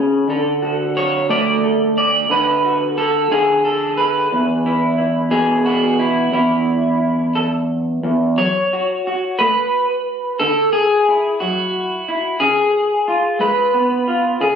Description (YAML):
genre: folk, solo fingerstyle acoustic guitar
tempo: 60 BPM (dotted quarters)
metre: 6/8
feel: straight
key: unclear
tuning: A4 = 441 Hz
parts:
  - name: electric guitar through a small old amp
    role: solo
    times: 0.0-14.6 s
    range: E2 to D5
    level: -15 LUFS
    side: equal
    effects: wide subtle chorus
room: moderate studio ambience, RT60 0.5 s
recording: recorded on a phone in the room, studio reverb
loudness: -15 LUFS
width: side -7 dB against mid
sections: 0.0-8.4 A section; 8.4-14.6 B section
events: none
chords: 0.3 D; 2.3 Bm/D; 4.3 E; 6.3 N.C.; 8.4 F#m; 10.4 Dadd9; 12.4 C#7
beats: | 0.27 1.29 | 2.30 3.31 | 4.31 5.30 | 6.32 7.34 | 8.37 9.39 | 10.40 11.40 | 12.40 13.39 | 14.40